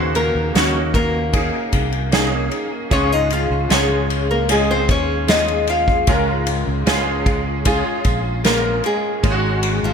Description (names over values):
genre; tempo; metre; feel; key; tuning
pop ballad; 76 BPM; 4/4; straight; Db major; A4 = 441 Hz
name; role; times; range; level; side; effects
nylon-string guitar; melody; 0.0-9.9 s; F3 to F5; -21 LUFS; left 2 dB; none
clear concert grand piano; accompaniment; 0.0-9.9 s; Ab2 to Bb4; -21 LUFS; right 1 dB; ensemble chorus
sustaining fretless electric bass; bass; 0.0-9.9 s; Ab1 to Eb2; -22 LUFS; equal; ensemble chorus
unplugged drum kit; drums; 0.1-9.8 s; kick drum, ride cymbal, snare drum; -21 LUFS; equal; gated reverb
room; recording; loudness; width
light reverb, small room ambience; bright 1980s-style digital production; -16 LUFS; side -6 dB against mid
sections
0.0-9.9 A section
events
none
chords
0.0 Ebm7; 2.9 Db; 9.2 Ab7sus4